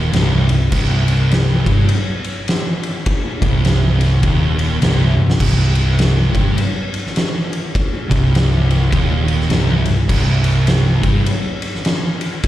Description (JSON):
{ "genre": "stoner and doom metal", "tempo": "102 BPM", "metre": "4/4", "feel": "swing 61% on 8ths", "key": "C minor", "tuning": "A4 = 439 Hz", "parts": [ { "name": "thick fuzz guitar", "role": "riff", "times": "0.0-11.3 s", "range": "C2 to G2", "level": "-20 LUFS", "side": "left 4 dB", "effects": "distortion" }, { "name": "thick fuzz guitar", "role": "riff", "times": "0.0-11.3 s", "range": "C2 to G2", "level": "-18 LUFS", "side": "right 4 dB", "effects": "distortion" }, { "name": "vintage muted picked electric bass", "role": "bass", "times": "0.0-11.2 s", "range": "C1 to G1", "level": "-18 LUFS", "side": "equal", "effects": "overdrive" }, { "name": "oversized low-tuned drum kit", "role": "drums", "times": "0.1-12.5 s", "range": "crash cymbal, kick drum, ride cymbal, snare drum, toms", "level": "-18 LUFS", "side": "equal", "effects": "none" } ], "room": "little or no reverb", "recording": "live gig heard through the venue's PA, recital hall reverb", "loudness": "-13 LUFS", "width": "side -14 dB against mid", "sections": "0.0-12.5 A section", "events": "drum fill 5.1", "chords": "0.0 Cm", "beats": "0.13 | 0.72 1.30 1.89 2.47 | 3.06 3.64 4.23 4.82 | 5.40 5.99 6.57 7.16 | 7.75 8.33 8.92 9.50 | 10.09 10.68 11.26 11.85 | 12.43" }